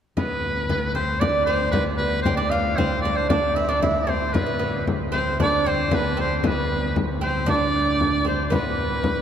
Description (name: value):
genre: medieval dance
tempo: 115 BPM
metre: 2/4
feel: straight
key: unclear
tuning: A4 = 436 Hz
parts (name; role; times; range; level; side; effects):
- bright shawm; melody; 0.2-9.2 s; B4 to F5; -25 LUFS; equal; none
- oud; second line; 0.2-9.2 s; B3 to F4; -25 LUFS; right 3 dB; slapback echo
- pipe organ, foundations; drone; 0.2-9.2 s; D2 to A2; -28 LUFS; left 1 dB; none
- frame drum; percussion; 0.2-9.2 s; none; -25 LUFS; left 2 dB; none
- breathy bright alto recorder; second line; 8.3-9.2 s; B4 to C5; -31 LUFS; left 3 dB; none
room: wet cathedral reverb, RT60 5.9 s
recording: none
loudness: -20 LUFS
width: side -8 dB against mid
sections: 0.2-8.5 A section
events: none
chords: none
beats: | 0.17 0.69 | 1.22 1.74 | 2.26 2.78 | 3.30 3.83 | 4.35 4.87 | 5.39 5.91 | 6.43 6.96 | 7.48 8.00 | 8.52 9.04